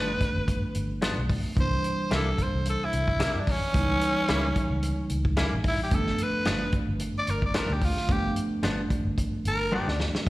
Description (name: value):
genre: straight-eighth soul blues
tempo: 110 BPM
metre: 4/4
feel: swing 55% on 16ths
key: G mixolydian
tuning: A4 = 441 Hz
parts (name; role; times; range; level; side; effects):
- raspy tenor saxophone; melody; 0.0-10.0 s; C#4 to D5; -29 LUFS; equal; slapback echo
- bell-like tine electric piano; accompaniment; 0.0-10.3 s; E3 to Eb4; -32 LUFS; right 2 dB; none
- direct-recorded clean electric guitar; stabs; 0.0-9.9 s; G2 to E4; -32 LUFS; left 3 dB; slapback echo
- vintage muted fingered electric bass; bass; 0.0-10.3 s; G1 to G2; -29 LUFS; equal; none
- warm soul drum kit; drums; 0.2-10.3 s; hi-hat, kick drum, snare drum, toms; -28 LUFS; equal; none
room: light reverb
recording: live gig heard through the venue's PA, recital hall reverb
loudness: -24 LUFS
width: side -18 dB against mid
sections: 0.0-10.3 A section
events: drum fill 9.7-10.3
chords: 0.0 G7; 1.6 C7; 3.7 C#dim7; 5.9 G7